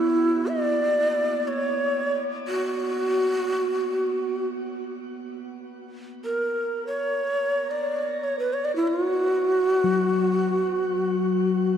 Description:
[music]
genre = world meditative, free-time meditation music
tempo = free time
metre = none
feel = none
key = unclear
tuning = A4 = 441 Hz
[part]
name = breathy low Native American-style wooden flute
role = melody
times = 0.0-11.8 s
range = E4 to D5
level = -23 LUFS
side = equal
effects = shimmer reverb
[part]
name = bronze singing bowl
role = texture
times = 0.0-11.8 s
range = F#3 to B3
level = -30 LUFS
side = left 3 dB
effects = shimmer reverb
[sound]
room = wet huge ambient reverb, RT60 4.6 s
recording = dark, warm production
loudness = -22 LUFS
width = side -9 dB against mid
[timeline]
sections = 0.0-11.8 A section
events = none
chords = none

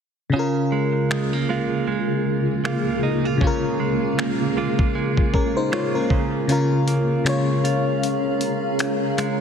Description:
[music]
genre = contemporary R&B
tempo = 78 BPM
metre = 4/4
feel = swing 58% on 16ths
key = Db major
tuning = A4 = 438 Hz
[part]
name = FM electric piano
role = accompaniment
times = 0.3-9.4 s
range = Db3 to Db5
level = -23 LUFS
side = left 3 dB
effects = chorus
[part]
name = granular cloud pad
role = sustained chords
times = 1.0-9.4 s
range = Db3 to Bb5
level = -25 LUFS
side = left 1 dB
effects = built-in reverb, sidechain pumping
[part]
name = direct-recorded clean electric guitar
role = arpeggios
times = 0.3-9.4 s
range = Db3 to F4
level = -25 LUFS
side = right 7 dB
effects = digital delay
[part]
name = dusty soul sampler-style drum kit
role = drums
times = 1.1-9.4 s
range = finger snaps, hi-hat, kick drum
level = -25 LUFS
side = equal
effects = none
[sound]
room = light reverb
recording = heavily compressed radio sound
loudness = -19 LUFS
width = side -7 dB against mid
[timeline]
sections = 0.3-6.5 A section; 6.5-9.4 B section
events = kick muted 6.5-9.4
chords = 0.3 Db6

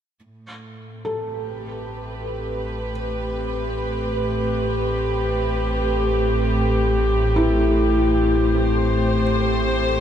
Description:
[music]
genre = ambient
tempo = free time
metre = none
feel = none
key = A minor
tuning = A4 = 441 Hz
[part]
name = dark studio string section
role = sustained chords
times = 0.2-10.0 s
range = A2 to C5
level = -22 LUFS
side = equal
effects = none
[part]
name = deep rumbling drone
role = bass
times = 1.9-10.0 s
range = A1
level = -25 LUFS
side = equal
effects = built-in reverb, phaser
[part]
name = felt-muted upright piano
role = arpeggios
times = 1.0-10.0 s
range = E4 to A4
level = -25 LUFS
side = left 2 dB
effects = diffuse ambient delay
[sound]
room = wet cathedral reverb, RT60 5.9 s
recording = in a vast, echoing space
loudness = -19 LUFS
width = side -9 dB against mid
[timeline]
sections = 0.3-10.0 A section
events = fade-in on string section 0.3-10.0; fade-in on felt piano 0.3-10.0; fade-in on synth drone 0.3-10.0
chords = 0.3 Am7

